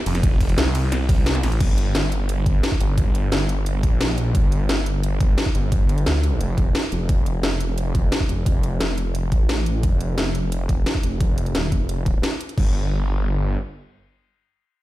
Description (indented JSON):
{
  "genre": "dark technical drum and bass",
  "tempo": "175 BPM",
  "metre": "4/4",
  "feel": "straight",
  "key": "unclear",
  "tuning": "A4 = 440 Hz",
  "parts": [
    { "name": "snarling distorted saw bass", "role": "bass", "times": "0.1-13.6 s", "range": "Eb1 to D2", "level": "-21 LUFS", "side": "equal", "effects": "overdrive" },
    { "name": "drum and bass drum kit", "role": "drums", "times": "0.1-12.6 s", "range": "crash cymbal, hi-hat, ride cymbal, snare drum", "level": "-25 LUFS", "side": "equal", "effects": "overdrive" },
    { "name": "electronic kick drum", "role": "drums", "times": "0.2-12.6 s", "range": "none", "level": "-20 LUFS", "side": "equal", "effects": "overdrive" }
  ],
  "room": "little or no reverb",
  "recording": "played on a big sound system in a bare room, stone room reverb",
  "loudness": "-18 LUFS",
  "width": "side -16 dB against mid",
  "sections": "0.0-1.6 A section; 1.6-12.6 B section; 12.6-14.8 C section",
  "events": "drop 0.0-1.6; kick drops out 1.3-1.6; filter sweep on detuned saw bass 1.6-12.6",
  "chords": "none"
}